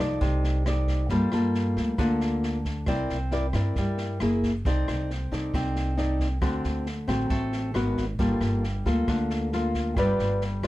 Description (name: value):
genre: bossa nova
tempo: 135 BPM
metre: 4/4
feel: straight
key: G minor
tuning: A4 = 439 Hz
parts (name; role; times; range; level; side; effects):
- nylon-string guitar; accompaniment; 0.0-10.7 s; C3 to D5; -26 LUFS; left 1 dB; none
- upright bass; bass; 0.0-10.7 s; F#1 to G2; -28 LUFS; equal; none
- open jazz drum kit; drums; 0.2-10.7 s; kick drum, rim click, snare drum; -32 LUFS; equal; none
room: light reverb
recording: dark, warm production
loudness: -24 LUFS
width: side -16 dB against mid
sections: 0.0-10.7 A section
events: none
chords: 0.0 F6; 1.1 Gm9; 2.9 C9; 4.2 F#9; 4.7 Cm69; 6.4 D7; 7.8 Abm9; 8.2 Gm9; 10.0 G7